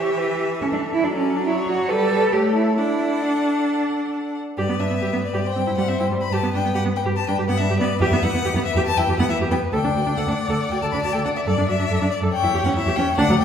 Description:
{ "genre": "quick classical-period movement for string quartet", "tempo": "139 BPM", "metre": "4/4", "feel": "rubato", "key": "D major, G major from 4.6 s", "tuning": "A4 = 440 Hz", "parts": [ { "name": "clear violin", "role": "melody", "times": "0.0-13.4 s", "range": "C#5 to B5", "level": "-26 LUFS", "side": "left 6 dB", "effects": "none" }, { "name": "rich violin", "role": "second line", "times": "0.0-13.4 s", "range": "A4 to D5", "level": "-28 LUFS", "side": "left 3 dB", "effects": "none" }, { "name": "clear viola", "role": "accompaniment", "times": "0.0-13.4 s", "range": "E3 to A4", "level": "-24 LUFS", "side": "equal", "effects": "none" }, { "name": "clear cello", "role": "bass", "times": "0.0-13.4 s", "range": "D2 to A4", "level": "-22 LUFS", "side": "right 2 dB", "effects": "none" } ], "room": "wet recital hall reverb, RT60 1.5 s", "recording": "heard from further back in the room", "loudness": "-19 LUFS", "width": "side -8 dB against mid", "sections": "0.0-4.6 A section; 4.6-13.4 B section", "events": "none", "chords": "0.0 A7(no3)/E; 1.0 D/F#; 1.9 G; 2.3 A7; 2.8 D; 4.6 G; 5.4 C5; 6.3 G; 8.0 E5; 9.7 D; 11.5 D/F#; 12.3 C#dim", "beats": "0.19 0.61 | 1.03 1.46 1.89 2.33 | 2.77 3.23 3.69 4.13 | 4.58 5.01 5.45 5.88 | 6.31 6.74 7.17 7.59 | 8.01 8.44 8.86 9.29 | 9.73 10.16 10.60 11.03 | 11.47 11.90 12.33 12.76 | 13.19" }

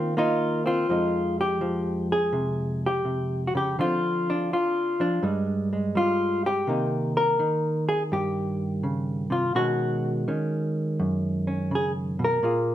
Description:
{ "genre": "solo jazz", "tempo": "83 BPM", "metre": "4/4", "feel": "swing 67% on 8ths", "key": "F minor", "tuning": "A4 = 439 Hz", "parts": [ { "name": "hollow-body jazz guitar", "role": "solo", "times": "0.0-12.7 s", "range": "F2 to Bb4", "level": "-23 LUFS", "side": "equal", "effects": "none" } ], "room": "wet studio reverb, RT60 0.6 s", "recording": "rough home demo mix", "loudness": "-23 LUFS", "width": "side -12 dB against mid", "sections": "0.9-12.7 A section", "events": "none", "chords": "0.0 Ebsus2; 0.9 Fm9; 3.8 Dm7; 5.2 G5; 6.7 Cm7; 9.6 B69", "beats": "0.18 | 0.90 1.61 2.34 3.06 | 3.78 4.50 5.22 5.94 | 6.66 7.39 8.11 8.83 | 9.55 10.27 10.99 11.72 | 12.44" }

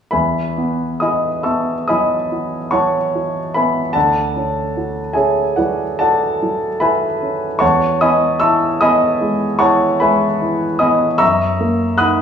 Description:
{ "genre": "classical, impressionist solo piano", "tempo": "44-51 BPM (dotted quarters)", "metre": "9/8", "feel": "rubato", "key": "E major", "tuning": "A4 = 441 Hz", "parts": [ { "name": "warm concert grand piano", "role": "solo", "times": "0.1-12.2 s", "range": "D2 to F#6", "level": "-14 LUFS", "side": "equal", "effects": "none" } ], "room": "moderate recital hall reverb, RT60 1.4 s", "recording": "studio reverb", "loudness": "-14 LUFS", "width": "side -7 dB against mid", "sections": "0.1-12.2 A section", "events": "none", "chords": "0.1 Eadd9; 4.0 Dmaj7; 7.6 Emaj9; 11.2 F#13", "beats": "| 0.14 1.47 2.73 | 3.95 5.17 6.41 | 7.62 8.82 10.01 | 11.21" }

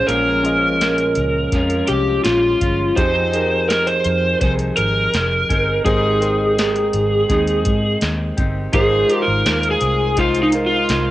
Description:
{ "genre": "indie pop, bedroom pop", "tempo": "83 BPM", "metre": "4/4", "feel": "straight", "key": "Ab major", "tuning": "A4 = 440 Hz", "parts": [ { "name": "overdriven slide guitar", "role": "melody", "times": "0.0-11.1 s", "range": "Eb4 to C5", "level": "-17 LUFS", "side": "equal", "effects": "lush chorus, cassette tape, analog delay" }, { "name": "chorused retro synth keys", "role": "accompaniment", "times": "0.0-11.1 s", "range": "Db4 to G5", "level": "-26 LUFS", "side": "right 1 dB", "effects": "cassette tape" }, { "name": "clean electric guitar", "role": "accompaniment", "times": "0.0-11.1 s", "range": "Bb2 to C5", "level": "-23 LUFS", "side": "left 1 dB", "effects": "wide subtle chorus, vibrato effect, cassette tape" }, { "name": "vintage muted fingered electric bass", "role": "bass", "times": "0.1-11.1 s", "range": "F1 to Ab2", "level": "-23 LUFS", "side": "equal", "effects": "none" }, { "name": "soft vintage rhythm box", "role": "drums", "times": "0.1-11.1 s", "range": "hi-hat, kick drum, snare drum", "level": "-22 LUFS", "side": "equal", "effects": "none" } ], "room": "light reverb, digital ambience", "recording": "home recording on cassette", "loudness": "-15 LUFS", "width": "side -15 dB against mid", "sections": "0.0-8.7 A section; 8.7-11.1 B section", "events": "electric slide guitar solo 8.7-11.1", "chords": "0.0 Bbm7; 3.0 Fm7; 5.9 Abmaj7; 8.7 Ab6", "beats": "| 0.08 0.81 1.53 2.25 | 2.97 3.69 4.41 5.13 | 5.86 6.58 7.30 8.02 | 8.74 9.46 10.18 10.90" }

